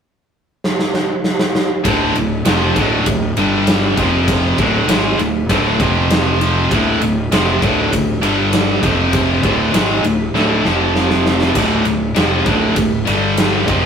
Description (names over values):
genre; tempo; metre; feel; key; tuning
hard rock; 99 BPM; 4/4; straight; D minor; A4 = 440 Hz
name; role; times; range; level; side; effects
big rock drum kit; drums; 0.6-13.8 s; kick drum, ride cymbal, snare drum, splash cymbal; -18 LUFS; equal; none
high-gain distorted guitar; riff; 1.8-13.9 s; D2 to G#3; -18 LUFS; left 6 dB; distortion
tight distorted guitar; riff; 1.8-13.9 s; D2 to G#3; -18 LUFS; right 6 dB; distortion
fuzz fingered electric bass; bass; 1.9-13.9 s; D1 to G#1; -20 LUFS; equal; overdrive
room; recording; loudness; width
moderate studio reverb, RT60 0.5 s; rough rehearsal-room recording, tube saturation; -13 LUFS; side -7 dB against mid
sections
0.0-1.9 A section; 1.9-13.9 B section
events
drum fill 0.6-1.9, 10.3-11.6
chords
0.0 N.C.; 1.9 Dm; 3.4 G5; 4.0 F5; 4.6 D5; 5.8 F5; 6.7 Dm; 8.2 G5; 8.8 F5; 9.4 D5; 10.6 F5; 11.6 Dm; 13.1 G5